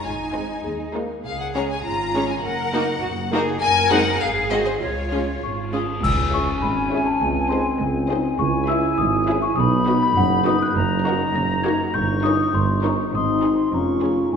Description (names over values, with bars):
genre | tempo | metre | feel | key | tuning
cinematic, playful, whimsical film cue | 101 BPM | 2/4 | straight | Db major, C# minor from 6.0 s | A4 = 440 Hz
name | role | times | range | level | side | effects
clear studio violin section | melody | 0.0-14.3 s | C5 to Bb5 | -27 LUFS | left 6 dB | none
silver concert flute | second line | 0.0-14.4 s | C5 to Db6 | -27 LUFS | left 1 dB | none
rich studio cello section | bass | 0.0-14.4 s | C#2 to Bb4 | -28 LUFS | right 2 dB | none
rich studio double bass section | bass | 0.0-14.4 s | F1 to Eb2 | -29 LUFS | right 3 dB | none
clear studio violin section | second line | 0.3-14.3 s | F4 to Db5 | -32 LUFS | left 3 dB | none
clear studio viola section | accompaniment | 0.3-14.2 s | Ab3 to G#4 | -29 LUFS | right 1 dB | none
mellow French horn section | sustained chords | 0.3-14.4 s | Ab3 to Gb4 | -28 LUFS | left 2 dB | none
cymbal swell, clash cymbals and concert bass drum | percussion | 3.6-7.2 s | none | -30 LUFS | equal | none
worn celesta | melody | 5.4-14.4 s | F#5 to Bb6 | -25 LUFS | left 5 dB | none
mellow clarinet | second line | 6.0-14.4 s | B#3 to E4 | -27 LUFS | right 1 dB | none
mellow tuba | bass | 6.0-14.4 s | F1 to C#2 | -25 LUFS | right 2 dB | none
room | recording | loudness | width
wet scoring stage reverb, RT60 1.9 s | recorded in a church or concert hall, nothing above 10.8 kHz | -18 LUFS | side -6 dB against mid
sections
0.0-6.0 A section; 6.0-14.4 B section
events
band accent 6.0-6.6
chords
0.0 Ab; 1.3 Db; 2.4 Ebm/Gb; 3.6 Ab7/Gb; 4.2 Ab7; 4.8 Db; 6.0 C#m; 7.2 G#/C#; 8.4 C#m; 9.6 B; 10.8 Ebm/Gb; 11.9 Eb7/G; 13.1 Ab; 13.7 Db/F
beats
| 0.04 0.65 | 1.25 1.85 | 2.44 3.03 | 3.62 4.21 | 4.82 5.42 | 6.03 6.62 | 7.22 7.81 | 8.40 8.99 | 9.58 10.16 | 10.75 11.35 | 11.94 12.54 | 13.13 13.72 | 14.33